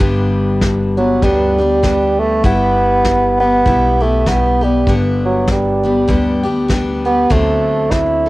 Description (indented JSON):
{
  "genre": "acoustic folk duo or small band",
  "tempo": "99 BPM",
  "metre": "4/4",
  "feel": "swing 58% on 8ths",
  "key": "G major",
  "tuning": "A4 = 439 Hz",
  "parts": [
    { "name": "picked steel-string acoustic guitar", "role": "accompaniment", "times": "0.0-8.3 s", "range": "G2 to A4", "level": "-17 LUFS", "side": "left 2 dB", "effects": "cassette tape" },
    { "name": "upright bass", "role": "bass", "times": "0.0-8.3 s", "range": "G1 to D2", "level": "-20 LUFS", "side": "equal", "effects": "none" },
    { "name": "soft brush drum kit", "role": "drums", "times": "0.0-8.1 s", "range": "kick drum, snare drum", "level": "-18 LUFS", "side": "equal", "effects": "cassette tape" },
    { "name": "mellow bassoon", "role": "second line", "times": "1.0-8.3 s", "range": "F#3 to E4", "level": "-14 LUFS", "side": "right 2 dB", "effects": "cassette tape" }
  ],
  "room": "light reverb, small room ambience",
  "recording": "home recording on cassette",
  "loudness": "-12 LUFS",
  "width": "side -19 dB against mid",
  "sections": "0.0-8.3 A section",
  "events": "bassoon solo 0.0-8.3",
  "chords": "0.0 G; 2.4 Em/G; 4.9 G; 7.3 D7"
}